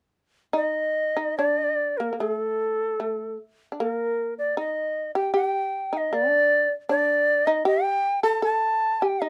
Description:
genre	japanese traditional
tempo	76 BPM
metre	4/4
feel	rubato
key	D miyako bushi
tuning	A4 = 440 Hz
part	shamisen	second line	0.5-9.3 s	A3 to A4	-29 LUFS	equal	none
part	bright reedy shakuhachi	melody	0.6-9.3 s	A4 to A5	-25 LUFS	equal	none
room	light reverb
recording	dark, warm production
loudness	-24 LUFS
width	mono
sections	0.5-9.3 A section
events	none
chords	none

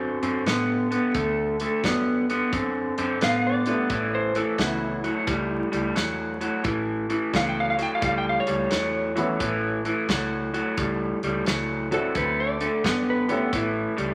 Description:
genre	electric blues shuffle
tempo	87 BPM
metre	4/4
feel	swing 66% on 8ths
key	unclear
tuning	A4 = 440 Hz
part	electric slide guitar	melody	0.0-14.1 s	E4 to G5	-30 LUFS	equal	none
part	electric guitar through a small old amp	riff	0.0-14.1 s	A2 to C4	-27 LUFS	equal	none
part	vintage muted fingered electric bass	bass	0.0-14.1 s	A1 to A2	-38 LUFS	equal	none
part	warm soul drum kit	drums	0.2-14.1 s	hi-hat, kick drum, snare drum	-31 LUFS	equal	none
part	dark upright piano	accompaniment	1.8-13.5 s	E3 to G4	-33 LUFS	equal	none
room	moderate large studio reverb, RT60 1.2 s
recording	vinyl crackle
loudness	-25 LUFS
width	mono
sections	0.0-14.1 A section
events	electric slide guitar solo 0.0-14.1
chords	0.0 D7; 3.9 A7; 12.2 D7; 13.5 A7

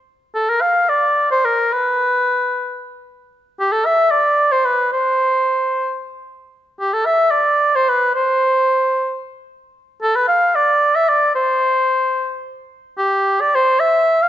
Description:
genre	mexican folk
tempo	74 BPM (dotted quarters)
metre	6/8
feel	rubato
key	C major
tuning	A4 = 441 Hz
part	warm oboe	solo	0.3-14.3 s	G4 to F5	-14 LUFS	equal	none
room	moderate concert hall reverb, RT60 1.7 s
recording	nothing above 7.9 kHz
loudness	-14 LUFS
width	side -11 dB against mid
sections	0.1-13.0 A section; 13.0-14.3 B section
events	none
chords	none

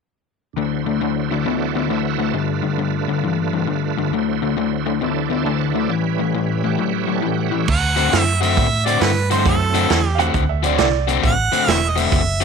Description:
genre	electric blues shuffle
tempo	135 BPM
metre	4/4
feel	swing 66% on 8ths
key	D mixolydian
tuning	A4 = 440 Hz
part	bright tonewheel organ	accompaniment	0.5-10.3 s	D2 to C6	-23 LUFS	right 14 dB	slow rotary speaker, overdrive, chorus vibrato
part	overdriven semi-hollow guitar	riff	0.6-12.4 s	G2 to F#4	-20 LUFS	left 11 dB	none
part	clear harmonica	melody	7.7-12.4 s	A4 to F#5	-20 LUFS	right 5 dB	none
part	vintage muted fingered electric bass	bass	7.7-12.4 s	E1 to A2	-20 LUFS	right 1 dB	none
part	vintage drum kit	drums	7.7-12.4 s	crash cymbal, hi-hat, kick drum, snare drum	-21 LUFS	right 5 dB	none
part	bright upright piano	second line	10.2-11.1 s	C#5 to F#5	-22 LUFS	right 14 dB	none
room	light reverb, small room ambience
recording	1960s-style stereo with parts hard left and right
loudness	-16 LUFS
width	side -5 dB against mid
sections	0.6-7.7 A section; 7.7-12.4 B section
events	none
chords	0.6 D7; 2.4 G7; 4.1 D7; 5.9 A7; 7.7 D7

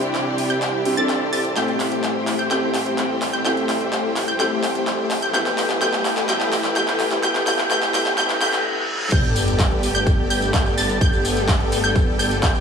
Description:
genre	EDM, festival progressive house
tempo	127 BPM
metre	4/4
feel	straight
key	G major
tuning	A4 = 442 Hz
part	clear grand piano	accompaniment	0.0-9.1 s	A3 to A4	-25 LUFS	equal	sidechain pumping, tape echo
part	clear studio string section	sustained chords	0.0-12.6 s	C3 to B4	-29 LUFS	left 1 dB	sidechain pumping
part	wide unison pluck	arpeggios	0.0-12.6 s	G6 to A6	-25 LUFS	right 1 dB	sidechain pumping, tape echo
part	dense compressed supersaw	riff	0.0-12.6 s	A3 to A5	-25 LUFS	left 1 dB	cassette tape, sidechain pumping, low-pass filter, tape echo
part	wide detuned saw bass	bass	0.0-12.6 s	E1 to A2	-30 LUFS	equal	none
part	big-room dance drum kit	drums	0.0-12.6 s	crash cymbal, handclaps, hi-hat, tambourine	-25 LUFS	equal	none
part	riser, reverse cymbal and sub drop	sound effects	3.8-11.0 s	none	-30 LUFS	equal	none
part	electronic kick drum	drums	9.1-12.5 s	none	-19 LUFS	equal	none
room	moderate lush hall reverb, RT60 2.4 s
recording	high-pass filter, small room ambience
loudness	-18 LUFS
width	side -6 dB against mid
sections	0.0-9.1 A section; 9.1-12.6 B section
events	build-up 0.0-9.1; drum fill 0.0-8.7; filter sweep on supersaw synth 0.0-9.1; filter sweep 0.0-9.1; reverse cymbal 8.2-9.1; stop 8.7-9.1; drop 9.1-12.6; impact 9.1-11.0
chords	0.0 Cadd9; 1.6 Am7; 5.3 Em; 9.1 Gadd9

